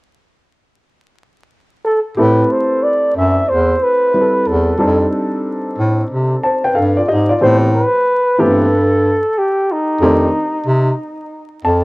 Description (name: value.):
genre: hip hop, jazz-hop.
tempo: 92 BPM.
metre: 4/4.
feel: swing 65% on 16ths.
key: unclear.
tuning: A4 = 440 Hz.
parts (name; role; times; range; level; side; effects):
breathy flugelhorn; melody; 1.8-11.0 s; D#4 to E5; -15 LUFS; equal; cassette tape, tape echo.
dark grand piano; accompaniment; 2.2-11.8 s; Eb3 to A5; -17 LUFS; equal; none.
clear bass clarinet; bass; 2.2-11.8 s; E2 to C3; -14 LUFS; equal; none.
room: light reverb.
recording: home recording on cassette, vinyl crackle.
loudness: -12 LUFS.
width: side -24 dB against mid.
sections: 0.0-2.2 A section; 2.2-7.4 B section; 7.4-11.8 C section.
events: grand piano fill 11.3-11.8.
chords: 0.0 N.C.; 2.2 Am9; 4.8 F13; 7.4 Am9; 10.0 F13.